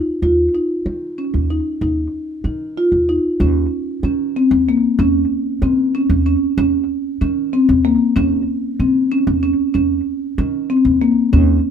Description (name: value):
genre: contemporary instrumental, chamber music in an uneven meter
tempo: 189 BPM (eighths)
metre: 5/8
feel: straight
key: unclear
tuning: A4 = 442 Hz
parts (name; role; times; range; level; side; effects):
- marimba with soft mallets; arpeggios; 0.0-11.7 s; Bb3 to F4; -16 LUFS; left 1 dB; none
- upright bass; bass; 0.2-11.6 s; Eb2 to Eb3; -18 LUFS; equal; none
room: moderate studio reverb, RT60 0.8 s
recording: minimal, uncompressed stereo recording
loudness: -14 LUFS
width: side -7 dB against mid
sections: 0.0-3.4 A section; 3.4-11.7 A section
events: none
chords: 0.0 Ebsus2; 3.4 Eb5